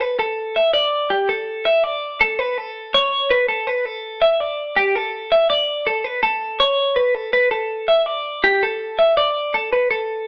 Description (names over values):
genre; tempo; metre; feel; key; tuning
rock; 164 BPM; 5/4; straight; unclear; A4 = 441 Hz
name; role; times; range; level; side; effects
twelve-string electric guitar; solo; 0.0-10.3 s; G4 to E5; -19 LUFS; equal; none
room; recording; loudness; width
moderate stone room reverb, RT60 1.1 s; band playing live in one room, AM radio sound; -19 LUFS; mono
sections
0.0-10.3 A section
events
none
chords
none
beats
| 0.01 0.38 0.74 1.11 1.48 | 1.84 2.21 2.57 2.94 3.31 | 3.67 4.04 4.40 4.77 5.13 | 5.50 5.87 6.23 6.60 6.97 | 7.33 7.70 8.07 8.43 8.80 | 9.17 9.54 9.90 10.27